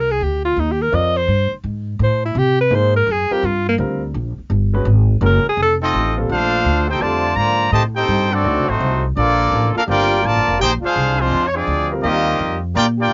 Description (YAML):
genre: jazz, big band swing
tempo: 167 BPM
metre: 4/4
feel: swing 66% on 8ths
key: Eb major, Bb major from 6.3 s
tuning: A4 = 440 Hz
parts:
  - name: clear alto saxophone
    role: melody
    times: 0.0-5.8 s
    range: Bb3 to Eb5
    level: -19 LUFS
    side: equal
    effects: cassette tape
  - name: upright bass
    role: bass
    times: 0.0-13.1 s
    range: F1 to C3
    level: -22 LUFS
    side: equal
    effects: none
  - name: warm baby grand piano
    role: accompaniment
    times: 0.9-12.4 s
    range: Bb2 to D5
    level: -26 LUFS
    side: equal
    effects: cassette tape
  - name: bright trumpet section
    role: melody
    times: 5.8-13.1 s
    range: Ab3 to Bb5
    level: -19 LUFS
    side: equal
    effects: cassette tape
  - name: clear trombone section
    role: second line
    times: 5.8-13.1 s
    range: C3 to G4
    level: -26 LUFS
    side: equal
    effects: cassette tape
room: moderate booth ambience, RT60 0.2 s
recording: home recording on cassette, nothing above 7.5 kHz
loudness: -17 LUFS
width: mono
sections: 0.0-6.3 A section; 6.3-13.1 B section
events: alto saxophone solo 0.0-6.3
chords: 0.0 Bb7; 0.6 Eb6; 2.0 Am; 2.7 Ab7; 3.4 Gm7; 4.9 Gbadd9; 5.6 F7; 6.3 Bbmaj9; 7.7 Am7b5; 8.4 D7b9; 9.2 Gm9; 10.6 Bb9; 12.0 Ebmaj9